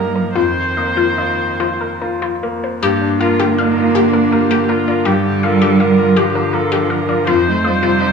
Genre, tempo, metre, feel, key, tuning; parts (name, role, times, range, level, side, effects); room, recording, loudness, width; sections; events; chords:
neoclassical piano and strings; 48-55 BPM (dotted quarters); 6/8; rubato; G minor; A4 = 440 Hz
muted cello; second line; 0.0-8.1 s; Eb3 to Bb3; -18 LUFS; right 5 dB
bright concert grand piano; accompaniment; 0.0-8.1 s; F2 to Eb5; -18 LUFS; left 3 dB
muted viola; accompaniment; 0.0-8.1 s; D4 to C5; -20 LUFS; right 2 dB
resonant blip pluck; arpeggios; 0.0-8.1 s; F4 to F5; -20 LUFS; left 7 dB; chorus, slapback echo
moderate large studio reverb, RT60 1.1 s; small room ambience; -13 LUFS; side -5 dB against mid
0.0-2.8 A section; 2.8-8.1 B section
0.4 F7sus4; 2.8 Gm7; 7.3 F7(no3)